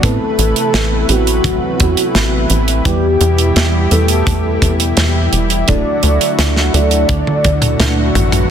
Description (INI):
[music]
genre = synthwave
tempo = 85 BPM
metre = 4/4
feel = straight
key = unclear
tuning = A4 = 440 Hz
[part]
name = warm velvety synth lead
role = melody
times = 0.0-8.4 s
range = F#4 to D5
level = -18 LUFS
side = equal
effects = chorus, tremolo, digital delay
[part]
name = lush unison pad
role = sustained chords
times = 0.0-8.5 s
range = B2 to B4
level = -20 LUFS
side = equal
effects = chorus, sidechain pumping
[part]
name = FM electric piano with soft pad layer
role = stabs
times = 0.0-8.5 s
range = G3 to B4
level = -22 LUFS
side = right 3 dB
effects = chorus, vintage 12-bit sampler grit, ping-pong delay
[part]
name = tight sequencer bass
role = bass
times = 0.0-8.5 s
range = D1 to A2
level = -15 LUFS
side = equal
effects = none
[part]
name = kick drum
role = drums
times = 0.0-7.6 s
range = none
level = -18 LUFS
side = equal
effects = soft clipping on kick, soft clipping on snare
[part]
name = tight metal drum kit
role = drums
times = 0.0-8.5 s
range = hi-hat, snare drum, toms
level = -17 LUFS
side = right 1 dB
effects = none
[sound]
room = light reverb, small room reverb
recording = dense, heavily limited modern master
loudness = -11 LUFS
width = side -8 dB against mid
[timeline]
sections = 0.0-8.5 A section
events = drum fill 7.1-8.5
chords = 0.0 Amadd9; 2.9 Em; 5.7 Dadd9